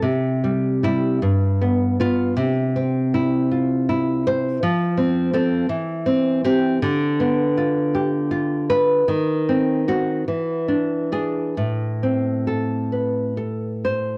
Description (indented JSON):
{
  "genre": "romantic piece for solo classical guitar",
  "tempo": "41-58 BPM (dotted quarters)",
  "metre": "6/8",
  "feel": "rubato",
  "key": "unclear",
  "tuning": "A4 = 439 Hz",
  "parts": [
    { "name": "nylon-string guitar", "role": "solo", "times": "0.0-14.2 s", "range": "G2 to C5", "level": "-21 LUFS", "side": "equal", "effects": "cassette tape" }
  ],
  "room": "moderate spring reverb, RT60 2.6 s",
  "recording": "home recording on cassette",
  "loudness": "-21 LUFS",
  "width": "mono",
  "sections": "0.0-14.2 A section",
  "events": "none",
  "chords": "0.0 C; 1.2 G7; 2.4 C; 4.6 F; 5.7 C/E; 6.8 Bdim/D; 9.1 D#m6; 10.3 E7; 11.6 Am",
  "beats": "| 0.03 1.23 | 2.37 3.52 | 4.63 5.70 | 6.82 7.93 | 9.07 10.27 | 11.58 12.93"
}